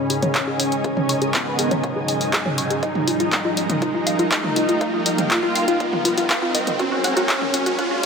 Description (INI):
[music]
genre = melodic techno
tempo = 121 BPM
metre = 4/4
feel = straight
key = unclear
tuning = A4 = 437 Hz
[part]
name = wide unison lead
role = melody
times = 0.0-8.1 s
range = B3 to E#4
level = -25 LUFS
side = right 1 dB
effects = ensemble chorus, sidechain pumping, ping-pong delay
[part]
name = lush unison pad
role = sustained chords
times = 0.0-8.1 s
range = C#3 to A#4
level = -29 LUFS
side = left 1 dB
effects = chorus, sidechain pumping
[part]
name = overtone-sweeping drone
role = drone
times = 0.0-8.1 s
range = G#2 to D#3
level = -34 LUFS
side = left 1 dB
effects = chorus, built-in reverb, phaser, sidechain pumping
[part]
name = riser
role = sound effects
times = 0.1-8.1 s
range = none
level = -29 LUFS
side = right 2 dB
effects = none
[part]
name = ethereal airy pad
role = texture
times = 0.0-8.1 s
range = C#4 to A#5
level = -27 LUFS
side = right 1 dB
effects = ensemble chorus, built-in reverb, sidechain pumping
[part]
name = warbly dusty pluck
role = arpeggios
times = 0.1-8.1 s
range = E#4 to C#6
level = -25 LUFS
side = left 2 dB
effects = chorus, sidechain pumping, ping-pong delay
[part]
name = punchy analog drum machine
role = drums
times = 0.1-8.1 s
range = handclaps, hi-hat, toms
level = -23 LUFS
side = equal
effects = none
[part]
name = electronic kick drum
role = drums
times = 0.3-7.9 s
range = none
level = -31 LUFS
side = equal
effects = none
[sound]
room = wet lush hall reverb, RT60 1.8 s, digital ambience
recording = high-pass filter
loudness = -18 LUFS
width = side -5 dB against mid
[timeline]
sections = 0.0-8.1 A section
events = build-up 0.0-8.1; filter sweep on synth arpeggio sound 0.0-8.1; filter sweep on analog synth pad 0.0-8.1; riser 0.1-8.1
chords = 0.0 C#sus2; 2.8 D#add9; 6.8 F#add9